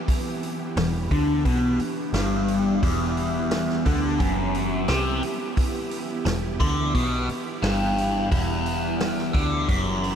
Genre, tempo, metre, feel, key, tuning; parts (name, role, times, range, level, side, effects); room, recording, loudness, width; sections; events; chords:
psychedelic rock; 87 BPM; 4/4; straight; E minor; A4 = 440 Hz
string machine, violas; sustained chords; 0.0-10.2 s; E3 to G4; -31 LUFS; right 3 dB; phaser, ensemble chorus
vintage drum kit; drums; 0.1-10.2 s; hi-hat, kick drum, snare drum; -28 LUFS; equal
biting overdriven guitar; riff; 0.8-10.2 s; E2 to D3; -24 LUFS; left 1 dB; phaser
overdriven picked electric bass; bass; 0.8-10.2 s; E1 to D2; -28 LUFS; equal
moderate huge ambient reverb, RT60 7.7 s; dreamy mix soaked in reverb; -21 LUFS; side -8 dB against mid
0.0-10.2 A section
0.0 Em